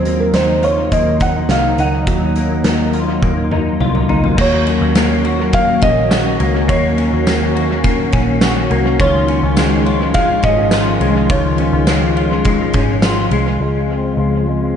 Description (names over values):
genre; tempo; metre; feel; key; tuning
dream pop; 104 BPM; 4/4; straight; unclear; A4 = 440 Hz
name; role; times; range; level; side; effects
felt-muted upright piano; melody; 0.0-12.1 s; Bb4 to Gb5; -20 LUFS; right 1 dB; dub echo
warbly tape-like pad; sustained chords; 0.0-14.8 s; Db3 to Gb4; -20 LUFS; right 1 dB; chorus, built-in reverb, low-pass filter
clean electric guitar; arpeggios; 0.0-14.8 s; Eb3 to Gb4; -18 LUFS; left 4 dB; ensemble chorus, low-pass filter, dub echo
vintage muted picked electric bass; bass; 0.0-14.7 s; Ab1 to Eb2; -19 LUFS; equal; none
oversized low-tuned drum kit; drums; 0.1-13.5 s; crash cymbal, hi-hat, kick drum, ride cymbal, snare drum, tambourine, toms; -18 LUFS; equal; dub echo
room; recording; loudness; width
moderate spring reverb, RT60 1.6 s, small room reverb; echo-heavy mix, nothing above 10.5 kHz; -12 LUFS; side -8 dB against mid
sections
0.0-4.4 A section; 4.4-13.6 B section; 13.6-14.8 C section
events
drum fill 3.2-4.4; filter sweep 13.6-14.8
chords
0.0 Ebmadd9; 4.4 Ebm7; 9.0 Dbadd9; 13.6 Dbmaj7